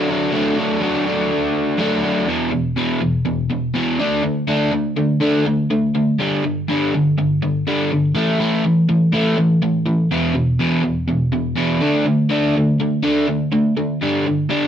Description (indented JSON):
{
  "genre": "rock",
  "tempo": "123 BPM",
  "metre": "4/4",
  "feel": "straight",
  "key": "unclear",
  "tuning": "A4 = 441 Hz",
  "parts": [
    { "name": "crunchy overdriven guitar", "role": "solo", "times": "0.0-14.7 s", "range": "E2 to F#4", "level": "-16 LUFS", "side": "equal", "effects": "none" }
  ],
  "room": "moderate studio reverb, RT60 0.6 s",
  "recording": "band playing live in one room",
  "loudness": "-16 LUFS",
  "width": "side -9 dB against mid",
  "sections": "0.0-2.3 A section; 2.3-14.7 B section",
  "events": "none",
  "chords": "0.0 D/F#; 2.3 E5; 4.0 D5; 6.2 G5; 8.2 A5; 10.1 E5; 11.8 D5; 14.0 G5",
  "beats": "| 0.33 0.82 1.31 1.80 | 2.29 2.78 3.26 3.75 | 4.24 4.73 5.22 5.71 | 6.20 6.69 7.17 7.66 | 8.15 8.64 9.13 9.62 | 10.11 10.59 11.08 11.57 | 12.06 12.55 13.04 13.52 | 14.01 14.50"
}